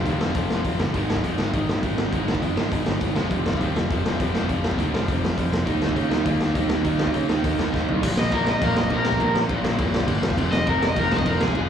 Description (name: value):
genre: punk rock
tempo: 203 BPM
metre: 4/4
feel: straight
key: F minor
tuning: A4 = 436 Hz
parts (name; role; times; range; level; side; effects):
- distorted electric guitar; riff; 0.0-11.7 s; F2 to Eb4; -29 LUFS; left 11 dB; distortion, slapback echo
- distorted electric guitar; riff; 0.0-8.0 s; F2 to Eb4; -30 LUFS; equal; distortion, slapback echo
- overdriven semi-hollow guitar; riff; 0.0-11.7 s; F2 to Eb4; -28 LUFS; right 10 dB; slapback echo
- fuzz picked electric bass; bass; 0.1-11.7 s; F1 to Db3; -27 LUFS; equal; overdrive
- raw garage drum kit; drums; 0.1-11.6 s; crash cymbal, hi-hat, kick drum, snare drum, toms; -25 LUFS; equal; none
- overdriven semi-hollow guitar; melody; 8.2-11.7 s; Ab4 to Eb5; -24 LUFS; left 1 dB; slapback echo
room: light reverb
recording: live gig heard through the venue's PA, club reverb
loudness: -20 LUFS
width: side -8 dB against mid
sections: 0.0-8.0 A section; 8.0-11.7 B section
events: drum fill 7.7; overdriven electric guitar solo 8.0-11.7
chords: 0.0 F5; 0.9 Ab5; 3.2 F5; 5.7 Eb5; 8.0 Bb5; 10.2 F5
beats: 0.07 0.36 0.66 | 0.95 1.25 1.54 1.84 | 2.13 2.43 2.72 3.02 | 3.31 3.61 3.90 4.20 | 4.50 4.79 5.09 5.38 | 5.68 5.97 6.27 6.56 | 6.86 7.15 7.45 7.74 | 8.03 8.33 8.62 8.91 | 9.21 9.50 9.79 10.08 | 10.38 10.67 10.96 11.25 | 11.54